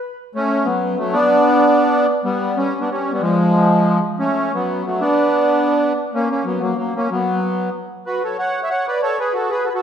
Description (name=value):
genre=musette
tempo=187 BPM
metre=3/4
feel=swing 54% on 8ths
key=B minor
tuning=A4 = 440 Hz
part: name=accordion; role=solo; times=0.3-9.8 s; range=E#3 to F#5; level=-16 LUFS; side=equal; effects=light tremolo tuning
room=wet recital hall reverb, RT60 1.5 s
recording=heard from further back in the room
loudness=-16 LUFS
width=side -8 dB against mid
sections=0.3-8.0 A section; 8.0-9.8 B section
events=none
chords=0.3 B5; 1.3 N.C.; 2.3 G; 3.2 N.C.; 4.2 F#m; 5.2 N.C.; 6.1 F#; 7.1 N.C.; 8.0 F#m